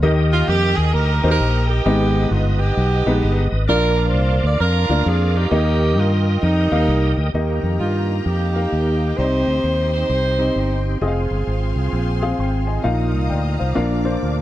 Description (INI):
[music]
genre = gospel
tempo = 131 BPM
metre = 4/4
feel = swing 64% on 8ths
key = Eb major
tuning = A4 = 441 Hz
[part]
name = clear concert grand piano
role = accompaniment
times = 0.0-14.4 s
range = Ab2 to C6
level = -23 LUFS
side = left 2 dB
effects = none
[part]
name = bright tonewheel organ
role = sustained chords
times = 0.0-14.4 s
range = Bb3 to Eb6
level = -27 LUFS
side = right 2 dB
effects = fast rotary speaker, chorus vibrato
[part]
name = fingered electric bass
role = bass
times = 0.0-14.4 s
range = F1 to G2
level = -19 LUFS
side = equal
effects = none
[part]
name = clear saxophone section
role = melody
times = 0.3-10.8 s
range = G3 to D5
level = -22 LUFS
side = right 2 dB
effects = none
[part]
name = warm studio string section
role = sustained chords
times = 7.3-14.4 s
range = Bb4 to Eb6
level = -33 LUFS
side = left 1 dB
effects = none
[sound]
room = light reverb, small room ambience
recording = dark, warm production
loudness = -16 LUFS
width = side -14 dB against mid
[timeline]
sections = 0.0-7.3 A section; 7.3-14.4 B section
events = none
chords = 0.0 Eb; 1.9 Abm; 3.7 Bb; 5.5 Eb; 9.2 Cm; 11.0 Fm; 12.8 Bbsus4; 13.8 Bb